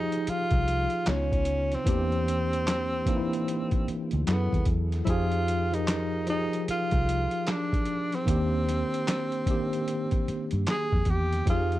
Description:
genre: R&B, neo-soul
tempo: 75 BPM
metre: 4/4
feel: swing 62% on 16ths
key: F dorian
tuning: A4 = 440 Hz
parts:
  - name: breathy tenor saxophone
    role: melody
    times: 0.0-11.8 s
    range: B3 to Ab4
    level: -30 LUFS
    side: right 1 dB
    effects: none
  - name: tine electric piano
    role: accompaniment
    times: 0.0-11.8 s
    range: Db3 to Bb4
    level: -31 LUFS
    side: equal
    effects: medium stereo tremolo
  - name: vintage muted fingered electric bass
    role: bass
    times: 0.0-11.8 s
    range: C2 to G2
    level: -29 LUFS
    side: equal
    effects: none
  - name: boom bap sampler-style drum kit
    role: drums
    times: 0.1-11.8 s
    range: handclaps, hi-hat, kick drum, snare drum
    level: -29 LUFS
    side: equal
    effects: none
room: little or no reverb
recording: dry, close 1970s-style studio recording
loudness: -25 LUFS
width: side -15 dB against mid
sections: 0.0-11.8 A section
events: none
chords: 0.0 Fm9; 1.1 Db9; 1.9 C9/E; 4.3 Gbm9; 5.1 Fm9; 8.3 Ebmaj7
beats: 0.27 1.07 | 1.87 2.67 3.47 4.27 | 5.07 5.87 6.67 7.47 | 8.27 9.07 9.87 10.67 | 11.47

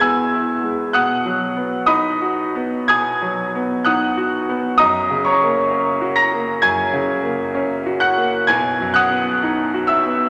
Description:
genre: classical, romantic character piece for solo piano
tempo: 65 BPM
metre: 4/4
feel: rubato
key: B major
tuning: A4 = 441 Hz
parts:
  - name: bright grand piano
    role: solo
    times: 0.0-10.3 s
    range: B1 to B6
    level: -18 LUFS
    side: equal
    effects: none
room: wet scoring stage reverb, RT60 2.2 s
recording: none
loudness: -18 LUFS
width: mono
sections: 0.0-10.3 A section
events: none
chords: 0.0 E; 0.9 B; 4.8 F#; 8.5 B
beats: 0.01 | 0.94 1.87 2.89 3.85 | 4.76 5.68 6.60 7.52 | 8.47 9.39

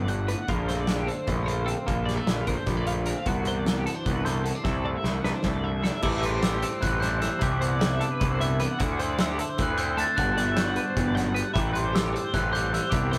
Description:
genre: math rock and midwest emo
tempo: 304 BPM (eighths)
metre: 7/8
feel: straight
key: C lydian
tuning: A4 = 441 Hz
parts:
  - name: twelve-string electric guitar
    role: accompaniment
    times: 0.0-13.2 s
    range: E2 to A4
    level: -34 LUFS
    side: equal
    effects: none
  - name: twelve-string electric guitar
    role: arpeggios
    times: 0.0-13.2 s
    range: E4 to F#5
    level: -36 LUFS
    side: equal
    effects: tremolo
  - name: fuzz picked electric bass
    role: bass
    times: 0.0-13.2 s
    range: G1 to D2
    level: -30 LUFS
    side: equal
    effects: overdrive
  - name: loose indie drum kit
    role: drums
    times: 0.1-13.2 s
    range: crash cymbal, hi-hat, kick drum, snare drum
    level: -32 LUFS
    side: equal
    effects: none
  - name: glockenspiel with soft plastic mallets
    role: melody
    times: 6.3-13.2 s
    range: C6 to A6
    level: -33 LUFS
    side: equal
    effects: none
room: light reverb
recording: rough rehearsal-room recording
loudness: -26 LUFS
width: mono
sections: 0.0-6.0 A section; 6.0-13.2 B section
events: drum fill 4.7-6.0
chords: 0.5 Bbmaj9; 3.3 Cmaj9#11; 4.7 C69; 6.0 Am7; 7.4 Cmaj9; 8.8 D9; 10.2 Gmaj9; 11.5 Am7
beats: 0.09 0.29 | 0.49 0.68 0.88 1.08 1.28 1.48 1.68 | 1.88 2.08 2.27 2.47 2.67 2.87 3.07 | 3.27 3.46 3.66 3.86 4.06 4.26 4.46 | 4.66 4.85 5.05 5.25 5.45 5.64 5.84 | 6.04 6.24 6.44 6.63 6.83 7.03 7.22 | 7.42 7.62 7.81 8.01 8.21 8.40 8.60 | 8.80 8.99 9.19 9.39 9.58 9.78 9.97 | 10.17 10.37 10.56 10.76 10.96 11.15 11.35 | 11.54 11.74 11.93 12.13 12.33 12.52 12.72 | 12.91 13.11

